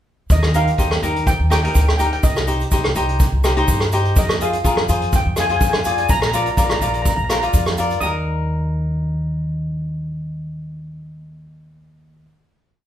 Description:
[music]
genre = calypso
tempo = 125 BPM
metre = 4/4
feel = straight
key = Eb major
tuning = A4 = 440 Hz
[part]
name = steel pan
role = melody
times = 0.3-12.2 s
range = Eb5 to Eb6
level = -23 LUFS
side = equal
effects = none
[part]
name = upright bass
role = bass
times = 0.3-12.2 s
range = Bb1 to G2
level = -21 LUFS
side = equal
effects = none
[part]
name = vintage brush drum kit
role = drums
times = 0.3-8.0 s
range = hi-hat, kick drum, rim click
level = -19 LUFS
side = equal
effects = none
[part]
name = egg shaker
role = percussion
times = 0.3-8.2 s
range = none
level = -31 LUFS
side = right 5 dB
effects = none
[part]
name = cavaquinho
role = accompaniment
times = 0.5-12.3 s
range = Eb4 to D5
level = -22 LUFS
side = left 2 dB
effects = none
[sound]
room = moderate large studio reverb, RT60 0.8 s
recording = band playing live in one room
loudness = -16 LUFS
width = side -11 dB against mid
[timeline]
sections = 0.3-8.0 verse; 8.0-11.9 final chord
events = none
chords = 0.3 Ebadd9; 2.2 Cm; 4.2 Fm; 6.1 Bb; 8.0 Eb5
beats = | 0.30 0.78 1.27 1.75 | 2.23 2.72 3.20 3.68 | 4.17 4.65 5.13 5.61 | 6.09 6.58 7.06 7.54 | 8.02 8.50 8.98 9.46 | 9.94 10.42 10.90 11.38

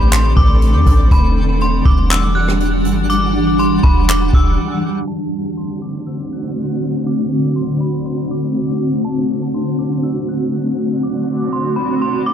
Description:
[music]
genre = hip hop, atmospheric cloud-rap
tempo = 121 BPM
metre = 4/4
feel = half-time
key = unclear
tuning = A4 = 441 Hz
[part]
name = metallic FM bell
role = melody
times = 0.0-12.3 s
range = A5 to F#6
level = -22 LUFS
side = equal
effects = chorus, low-pass filter, tape echo
[part]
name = granular cloud pad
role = sustained chords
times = 0.0-12.3 s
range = D3 to F#5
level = -17 LUFS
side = equal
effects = built-in reverb, sidechain pumping
[part]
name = clean 808-style bass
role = bass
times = 0.0-4.6 s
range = E1 to E2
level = -15 LUFS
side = equal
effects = none
[part]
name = twinkling granular texture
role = texture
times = 0.0-12.3 s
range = D4 to G5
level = -28 LUFS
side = left 2 dB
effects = built-in reverb
[part]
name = jazz brush drum kit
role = drums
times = 0.1-4.5 s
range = handclaps, hi-hat, kick drum, rim click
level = -15 LUFS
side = equal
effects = none
[sound]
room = light reverb, small room ambience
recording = echo-heavy mix, low-pass filter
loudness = -14 LUFS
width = side -9 dB against mid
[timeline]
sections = 0.0-5.1 A section; 5.1-12.3 B section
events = break 4.6-5.1; filter sweep 5.1-12.3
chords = 0.0 Am11; 1.1 Em9; 5.1 D7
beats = 0.12 0.62 | 1.11 1.61 2.10 2.60 | 3.10 3.59 4.09 4.58 | 5.08 5.58 6.07 6.57 | 7.06 7.56 8.05 8.55 | 9.05 9.54 10.04 10.53 | 11.03 11.53 12.02

